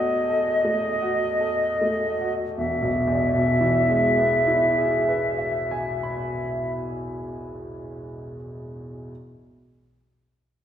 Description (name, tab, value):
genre	classical, romantic duo for flute and grand piano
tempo	36-43 BPM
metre	3/4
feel	rubato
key	E major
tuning	A4 = 441 Hz
part	silver concert flute	melody	0.0-6.7 s	D#5 to E5	-23 LUFS	left 1 dB	none
part	clear grand piano	accompaniment	0.0-9.1 s	E1 to B5	-26 LUFS	equal	none
room	wet recital hall reverb, RT60 1.6 s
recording	heard from further back in the room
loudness	-20 LUFS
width	side -10 dB against mid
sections	0.0-2.6 A section; 2.6-6.9 B section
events	slowing down 0.0-2.6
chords	0.0 B7/E (rootless); 2.6 E